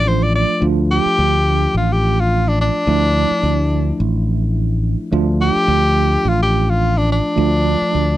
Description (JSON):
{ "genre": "straight-eighth soul blues", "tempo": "106 BPM", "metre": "4/4", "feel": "swing 54% on 16ths", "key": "D minor", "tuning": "A4 = 440 Hz", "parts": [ { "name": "bright tenor saxophone", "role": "melody", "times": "0.0-8.2 s", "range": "D4 to D5", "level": "-18 LUFS", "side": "left 1 dB", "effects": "none" }, { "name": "tine electric piano", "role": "accompaniment", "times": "0.0-8.2 s", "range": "F3 to F4", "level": "-20 LUFS", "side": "right 4 dB", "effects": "medium stereo tremolo" }, { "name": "fingered electric bass", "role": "bass", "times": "0.0-8.2 s", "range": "A1 to D2", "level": "-17 LUFS", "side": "left 1 dB", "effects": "none" } ], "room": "little or no reverb", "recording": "dry, close 1970s-style studio recording", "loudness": "-14 LUFS", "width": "side -14 dB against mid", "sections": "0.6-8.2 A section", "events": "tenor saxophone solo 0.6-8.2", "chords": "0.0 Dm" }